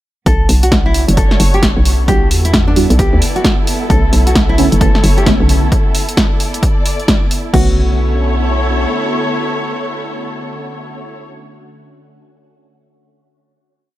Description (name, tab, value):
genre	UK garage, two-step garage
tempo	132 BPM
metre	4/4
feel	swing 62% on 16ths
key	B minor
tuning	A4 = 440 Hz
part	nylon-string guitar	melody	0.3-11.0 s	D4 to A4	-20 LUFS	equal	tape echo
part	soft string machine	sustained chords	0.3-11.0 s	D3 to F#4	-26 LUFS	equal	phaser, ensemble chorus, sidechain pumping
part	hollow knocking FM bass	bass	0.3-8.9 s	F#1 to E2	-13 LUFS	equal	sidechain pumping
part	electronic kick drum	drums	0.3-7.6 s	none	-15 LUFS	equal	overdrive
part	punchy analog drum machine	drums	0.3-7.6 s	crash cymbal, hi-hat, snare drum	-17 LUFS	equal	overdrive
part	dark symphonic string section	texture	0.3-11.3 s	B3 to D5	-21 LUFS	equal	sidechain pumping
part	deep mellow chord stab	stabs	2.1-11.0 s	D3 to F#4	-19 LUFS	right 2 dB	chorus, phaser, tape echo
room	digital ambience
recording	none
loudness	-10 LUFS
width	side -15 dB against mid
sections	0.3-7.5 groove; 7.5-11.2 final chord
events	none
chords	0.3 Bm9; 2.1 Em9; 3.9 Bm9; 5.7 E5; 7.5 Bm9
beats	| 0.26 0.72 1.17 1.63 | 2.08 2.54 2.99 3.45 | 3.90 4.36 4.81 5.26 | 5.72 6.17 6.63 7.08 | 7.54 7.99 8.45 8.90 | 9.36 9.81 10.26 10.72